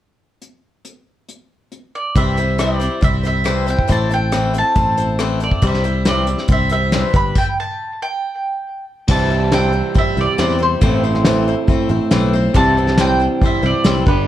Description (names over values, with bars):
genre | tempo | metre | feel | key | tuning
folk rock and heartland rock | 138 BPM | 4/4 | straight | C major | A4 = 440 Hz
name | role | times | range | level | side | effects
soft brush drum kit | drums | 0.4-14.2 s | crash cymbal, hi-hat, kick drum, rim click, snare drum | -18 LUFS | equal | none
bowl-back mandolin | melody | 2.0-14.3 s | B4 to B5 | -20 LUFS | right 1 dB | tape echo
picked swing-style acoustic guitar | accompaniment | 2.2-14.3 s | A2 to C5 | -21 LUFS | left 4 dB | none
picked electric bass | bass | 2.2-14.3 s | G1 to E2 | -19 LUFS | equal | none
electric guitar through a small old amp | riff | 9.1-14.3 s | G2 to G4 | -20 LUFS | right 3 dB | none
room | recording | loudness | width
light reverb | worn, warbling old tape, cassette tape, warbly pitch drift | -14 LUFS | side -12 dB against mid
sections
0.4-2.2 A section; 2.2-9.1 B section; 9.1-14.3 C section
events
stop 7.4-9.1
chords
0.4 N.C.; 2.2 C; 3.9 Am; 5.6 C; 7.1 G; 8.0 N.C.; 9.1 C; 10.8 Am; 12.6 C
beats
| 0.42 0.86 1.29 1.72 | 2.16 2.59 3.03 3.46 | 3.89 4.33 4.76 5.19 | 5.63 6.06 6.49 6.93 | 7.36 7.79 8.22 8.66 | 9.09 9.52 9.96 10.39 | 10.82 11.25 11.69 12.12 | 12.55 12.98 13.42 13.85